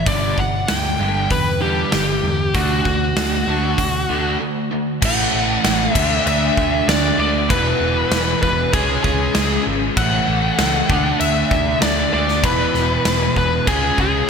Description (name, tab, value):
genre	hard rock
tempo	97 BPM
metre	4/4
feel	straight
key	unclear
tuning	A4 = 440 Hz
part	high-gain lead guitar	melody	0.0-14.3 s	F#4 to G5	-20 LUFS	left 2 dB	distortion
part	cranked stack guitar	riff	0.0-14.3 s	E2 to D4	-25 LUFS	left 11 dB	overdrive, ensemble chorus
part	overdriven semi-hollow guitar	riff	0.0-14.3 s	E2 to D4	-23 LUFS	right 10 dB	lush chorus
part	picked electric bass	bass	0.1-14.2 s	E1 to E2	-24 LUFS	equal	none
part	big rock drum kit	drums	0.1-14.1 s	crash cymbal, hi-hat, kick drum, snare drum	-21 LUFS	equal	gated reverb
room	moderate lush hall reverb, RT60 2.6 s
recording	bright 1980s-style digital production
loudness	-15 LUFS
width	side -6 dB against mid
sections	0.0-5.0 A section; 5.0-14.3 B section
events	break 4.4-5.0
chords	0.1 G5; 2.5 D; 5.0 A5; 6.0 D5; 7.5 E5; 8.7 C#5; 10.0 A; 10.9 D5; 12.4 E5; 13.7 C#5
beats	| 0.06 0.68 1.30 1.93 | 2.55 3.17 3.79 4.41 | 5.03 5.64 6.26 6.88 | 7.50 8.12 8.73 9.35 | 9.97 10.58 11.20 11.82 | 12.44 13.05 13.67 14.29